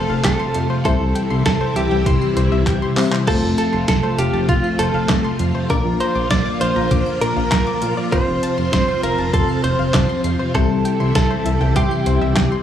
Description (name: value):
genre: synth-pop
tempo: 99 BPM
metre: 4/4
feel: straight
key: F major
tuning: A4 = 440 Hz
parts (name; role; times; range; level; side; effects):
- direct-recorded clean electric guitar; melody; 0.0-12.6 s; F4 to D5; -22 LUFS; right 2 dB; tremolo, analog delay
- FM electric piano; accompaniment; 0.0-12.6 s; F3 to F4; -24 LUFS; left 4 dB; chorus, phaser
- string machine, violins; sustained chords; 0.0-12.6 s; C3 to F4; -23 LUFS; equal; ensemble chorus
- analog pluck; arpeggios; 0.0-12.6 s; C5 to D7; -29 LUFS; left 5 dB; chorus, analog delay
- chorused synth bass; bass; 0.0-12.5 s; F1 to C3; -21 LUFS; equal; none
- detuned 8-bit digital drum machine; drums; 0.2-12.5 s; crash cymbal, handclaps, hi-hat, kick drum, snare drum; -20 LUFS; equal; none
room: light reverb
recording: small room reverb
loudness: -15 LUFS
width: side -10 dB against mid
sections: 0.0-12.6 A section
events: drum fill 2.7-3.3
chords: 0.0 F; 0.9 C; 3.3 F; 5.7 Bb; 8.1 F; 10.5 C